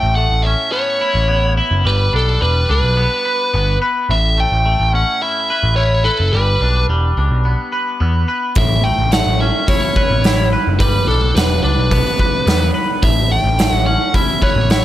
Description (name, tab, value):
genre	quiet-loud alternative rock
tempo	107 BPM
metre	4/4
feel	straight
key	A mixolydian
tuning	A4 = 440 Hz
part	biting lead guitar	melody	0.0-14.8 s	A4 to G5	-18 LUFS	equal	overdrive
part	twangy electric guitar	arpeggios	0.0-14.8 s	A2 to B4	-21 LUFS	left 1 dB	analog chorus
part	overdriven picked electric bass	bass	0.0-14.8 s	E1 to E2	-16 LUFS	equal	none
part	oversized low-tuned drum kit	drums	8.6-14.8 s	hi-hat, kick drum, snare drum	-16 LUFS	equal	none
room	small room ambience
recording	none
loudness	-13 LUFS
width	side -13 dB against mid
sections	0.0-14.8 A section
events	none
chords	0.0 Aadd9; 1.8 G; 4.1 Aadd9; 6.3 G; 8.6 Aadd9; 10.8 G; 13.0 Aadd9